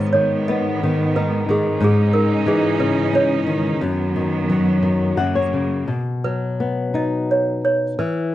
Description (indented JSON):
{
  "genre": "children's music, lullaby",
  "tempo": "87 BPM",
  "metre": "3/4",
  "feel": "uneven beats, rubato",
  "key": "B major",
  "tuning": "A4 = 440 Hz",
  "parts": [
    { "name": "toy piano", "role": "melody", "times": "0.0-8.3 s", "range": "G#4 to D#5", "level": "-21 LUFS", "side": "right 3 dB", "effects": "none" },
    { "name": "flamenco guitar", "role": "accompaniment", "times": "0.0-8.3 s", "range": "F#2 to F#5", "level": "-19 LUFS", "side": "left 3 dB", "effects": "none" },
    { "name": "clear studio string section", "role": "sustained chords", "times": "0.0-5.9 s", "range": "F#2 to D#4", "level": "-23 LUFS", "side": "right 4 dB", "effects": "none" }
  ],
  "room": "light reverb",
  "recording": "dry, close 1970s-style studio recording",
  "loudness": "-17 LUFS",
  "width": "side -14 dB against mid",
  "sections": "0.0-5.9 A section; 5.9-8.3 B section",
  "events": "nylon-string guitar fill 4.8-5.9",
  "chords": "0.0 G#m; 1.8 C#madd9/G#; 3.8 B/F#; 5.2 F#; 5.9 B"
}